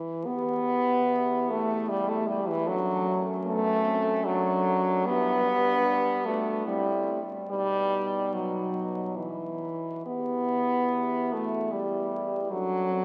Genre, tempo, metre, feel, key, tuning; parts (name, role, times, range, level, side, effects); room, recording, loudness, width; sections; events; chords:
classical, lyrical piece for horn quartet; 65-77 BPM; 3/4; rubato; E minor; A4 = 440 Hz
clear French horn; accompaniment; 0.0-13.0 s; E3 to B3; -28 LUFS; equal
clear French horn; second line; 0.2-13.0 s; A3 to E4; -41 LUFS; equal
clear French horn; bass; 0.2-13.0 s; E2 to B2; -39 LUFS; equal
warm French horn; melody; 0.3-13.0 s; D#4 to A4; -39 LUFS; equal
wet church reverb, RT60 3.3 s; very old 78 rpm record, vinyl crackle, nothing above 10.8 kHz; -28 LUFS; mono
0.2-13.0 A section
0.2 Em; 2.7 D/F#; 5.1 G; 6.7 Am; 7.5 B; 10.1 Em; 12.5 D/F#